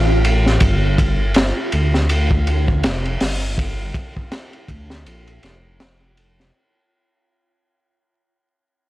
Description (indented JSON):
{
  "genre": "trip hop",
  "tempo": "81 BPM",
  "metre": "4/4",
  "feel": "swing 58% on 16ths",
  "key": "unclear",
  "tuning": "A4 = 438 Hz",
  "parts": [
    { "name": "dark detuned saw bass", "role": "bass", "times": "0.0-6.5 s", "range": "F1 to D2", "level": "-18 LUFS", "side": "equal", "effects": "none" },
    { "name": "backwards swelling texture", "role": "texture", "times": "0.0-6.6 s", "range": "F4", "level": "-28 LUFS", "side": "equal", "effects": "built-in reverb" },
    { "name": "crunchy breakbeat drum kit", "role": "drums", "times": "0.2-6.5 s", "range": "hi-hat, kick drum, ride cymbal, snare drum", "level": "-19 LUFS", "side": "equal", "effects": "none" }
  ],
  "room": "little or no reverb",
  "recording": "blown-out, overdriven recording, vinyl crackle, overdrive",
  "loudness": "-15 LUFS",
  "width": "side -16 dB against mid",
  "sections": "0.0-6.5 A section",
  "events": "fade-out 0.0-6.5",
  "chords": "0.0 Dm (rootless); 0.6 G7(no3)"
}